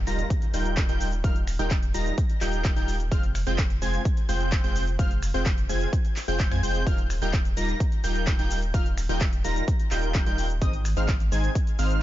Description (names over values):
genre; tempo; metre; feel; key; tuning
EDM, festival progressive house; 128 BPM; 4/4; straight; Eb major; A4 = 440 Hz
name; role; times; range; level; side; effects
saturated sub bass; bass; 0.0-12.0 s; Eb1 to F2; -28 LUFS; equal; sidechain pumping
impact; sound effects; 0.0-1.2 s; none; -42 LUFS; equal; none
wide unison lead; arpeggios; 0.1-12.0 s; Eb6 to Bb6; -33 LUFS; equal; cassette tape, sidechain pumping, ping-pong delay
supersaw stab; riff; 0.1-12.0 s; G3 to Bb5; -31 LUFS; equal; sidechain pumping, ping-pong delay
pop drum kit; drums; 0.1-12.0 s; finger snaps, handclaps, hi-hat, shaker; -35 LUFS; equal; overdrive
electronic kick drum; drums; 0.3-11.6 s; none; -24 LUFS; equal; overdrive
room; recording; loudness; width
digital ambience; nothing above 7.5 kHz; -22 LUFS; side -14 dB against mid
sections
0.0-12.0 A section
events
impact 0.0-1.2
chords
0.0 Ebadd9; 3.1 Fm; 6.9 Ebadd9; 10.6 Ab